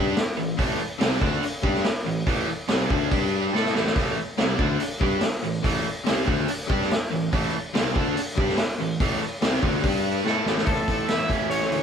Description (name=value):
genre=classic rock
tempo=143 BPM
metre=4/4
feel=straight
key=unclear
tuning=A4 = 438 Hz
part: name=crunchy overdriven guitar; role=riff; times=0.0-11.8 s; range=A2 to A4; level=-27 LUFS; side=right 5 dB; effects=none
part: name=overdriven semi-hollow guitar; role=riff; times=0.0-11.8 s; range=A2 to A4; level=-29 LUFS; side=left 6 dB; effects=none
part: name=warm tuba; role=bass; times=0.0-11.8 s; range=A1 to A2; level=-31 LUFS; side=equal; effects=none
part: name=vintage drum kit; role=drums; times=0.2-11.8 s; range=hi-hat, kick drum, snare drum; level=-25 LUFS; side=equal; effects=none
part: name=overdriven slide guitar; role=melody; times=10.7-11.8 s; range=A4 to E5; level=-26 LUFS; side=equal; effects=none
room=light reverb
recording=band playing live in one room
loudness=-21 LUFS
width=side -7 dB against mid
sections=0.0-10.7 A section; 10.7-11.8 B section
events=drum fill 3.5-4.0, 10.3-10.7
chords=0.0 A5; 3.1 G5; 3.5 A5; 9.8 G5; 10.3 A5; 10.7 A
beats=0.17 | 0.59 1.01 1.43 1.85 | 2.28 2.70 3.12 3.54 | 3.96 4.39 4.81 5.23 | 5.65 6.07 6.49 6.91 | 7.33 7.75 8.17 8.58 | 9.00 9.42 9.83 10.25 | 10.67 11.08 11.50